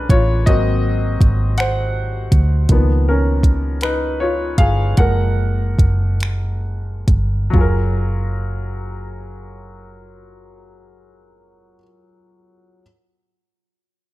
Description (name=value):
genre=slow six-eight R&B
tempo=43-54 BPM (dotted quarters)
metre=6/8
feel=straight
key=F# major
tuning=A4 = 440 Hz
part: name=clear grand piano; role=accompaniment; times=0.0-12.8 s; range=D3 to F#5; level=-22 LUFS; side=left 2 dB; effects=plate reverb
part: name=vintage muted fingered electric bass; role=bass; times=0.0-11.8 s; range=F#1 to D2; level=-18 LUFS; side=equal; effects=none
part: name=smooth R&B drum kit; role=drums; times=0.1-7.8 s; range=finger snaps, hi-hat, kick drum, toms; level=-15 LUFS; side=equal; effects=none
room=light reverb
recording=none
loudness=-15 LUFS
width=side -17 dB against mid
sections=0.0-7.5 A section; 7.5-10.3 B section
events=grand piano solo 0.0-7.5; slowing down 2.7-7.5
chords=0.5 G#7; 2.7 C#13; 5.0 F#maj9